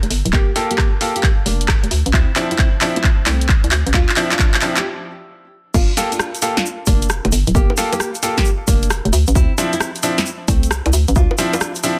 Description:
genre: UK garage, two-step garage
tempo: 133 BPM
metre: 4/4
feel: swing 66% on 16ths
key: G minor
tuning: A4 = 440 Hz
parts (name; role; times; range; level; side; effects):
- hollow knocking FM bass; bass; 0.0-11.3 s; D1 to D2; -20 LUFS; equal; sidechain pumping
- house drum kit; drums; 0.0-12.0 s; bongos, crash cymbal, handclaps, hi-hat, rim click, snare drum; -23 LUFS; equal; soft clipping on snare
- nylon-string guitar; melody; 0.3-11.7 s; A3 to G4; -29 LUFS; equal; digital delay
- electronic kick drum; drums; 0.3-11.3 s; none; -18 LUFS; equal; none
- bright baby grand piano; stabs; 0.6-12.0 s; F3 to A4; -24 LUFS; equal; low-pass filter, digital delay
- tube shaker; percussion; 5.7-12.0 s; none; -29 LUFS; equal; none
room: light reverb, digital ambience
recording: dense, heavily limited modern master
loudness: -17 LUFS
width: mono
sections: 0.0-5.7 A section; 5.7-12.0 B section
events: build-up 0.0-5.7; drum fill 0.0-4.8; break 4.8-5.7; drop 5.7-12.0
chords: 0.0 Gm9; 1.9 Dm9; 5.7 Gm9; 9.1 Dm9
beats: | 0.33 0.78 1.23 1.69 | 2.14 2.59 3.04 3.49 | 3.94 4.39 4.84 5.29 | 5.75 6.20 6.65 7.10 | 7.55 8.00 8.45 8.90 | 9.35 9.81 10.26 10.71 | 11.16 11.61

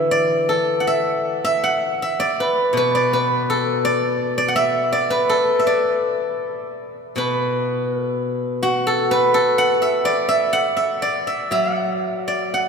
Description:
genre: chinese traditional, Chinese solo plucked strings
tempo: 78-85 BPM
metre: 2/4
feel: rubato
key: D gong mode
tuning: A4 = 440 Hz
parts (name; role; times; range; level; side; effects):
- steel-string zither; solo; 0.0-12.7 s; B2 to D6; -17 LUFS; equal; none
room: wet cathedral reverb, RT60 4.6 s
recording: recorded in a church or concert hall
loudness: -17 LUFS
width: side -5 dB against mid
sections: 0.0-7.2 A section; 7.2-12.7 B section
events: none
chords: none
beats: 0.48 | 1.25 2.01 | 2.75 3.48 | 4.19 4.92 | 5.65 6.41 | 7.17 7.92 | 8.64 9.35 | 10.06 10.79 | 11.53 12.28

